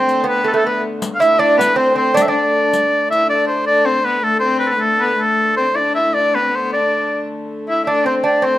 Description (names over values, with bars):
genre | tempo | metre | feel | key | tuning
medieval dance | 158 BPM | 3/4 | straight | unclear | A4 = 439 Hz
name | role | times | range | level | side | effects
clear oboe | melody | 0.0-8.6 s | A4 to F5 | -16 LUFS | equal | plate reverb
lute | second line | 0.0-3.1, 7.9-8.6 s | A3 to E4 | -17 LUFS | right 3 dB | plate reverb
rich viola da gamba | second line | 0.0-8.6 s | A3 to E4 | -23 LUFS | left 4 dB | plate reverb
dark hurdy-gurdy | drone | 0.0-8.6 s | D3 to A3 | -26 LUFS | left 1 dB | stereo widening, plate reverb
riq | percussion | 0.1-3.2 s | none | -27 LUFS | left 4 dB | none
room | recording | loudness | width
wet studio reverb, RT60 0.6 s | rough home demo mix | -14 LUFS | side -14 dB against mid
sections
0.0-3.3 A section; 3.3-8.6 B section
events
none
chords
none